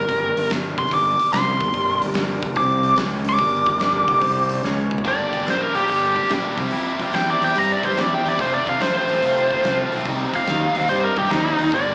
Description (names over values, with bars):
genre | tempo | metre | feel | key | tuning
blues rock power trio and southern rock | 144 BPM | 4/4 | swing 68% on 8ths | G minor | A4 = 440 Hz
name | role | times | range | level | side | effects
biting lead guitar | melody | 0.0-11.9 s | Eb4 to D6 | -19 LUFS | equal | overdrive, slapback echo
bright tonewheel organ | sustained chords | 0.0-11.9 s | G3 to C#5 | -30 LUFS | equal | slow rotary speaker
fuzz fingered electric bass | bass | 0.0-11.9 s | F1 to G2 | -26 LUFS | equal | overdrive
huge arena drum kit | drums | 0.1-11.9 s | hi-hat, kick drum, snare drum, toms | -28 LUFS | equal | none
biting overdriven guitar | riff | 5.0-11.9 s | F2 to G4 | -24 LUFS | equal | slapback echo
room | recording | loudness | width
light reverb, small room ambience | live gig heard through the venue's PA, club reverb, small speaker sound | -17 LUFS | side -36 dB against mid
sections
0.0-5.1 A section; 5.1-11.9 B section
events
lead electric guitar solo 0.0-5.1; drum fill 4.6-5.1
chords
0.0 Gm; 2.6 C5; 3.0 C#5; 3.4 Gm; 4.2 C5; 4.6 C#5; 5.1 Gm; 6.5 C; 8.4 F; 10.1 Cm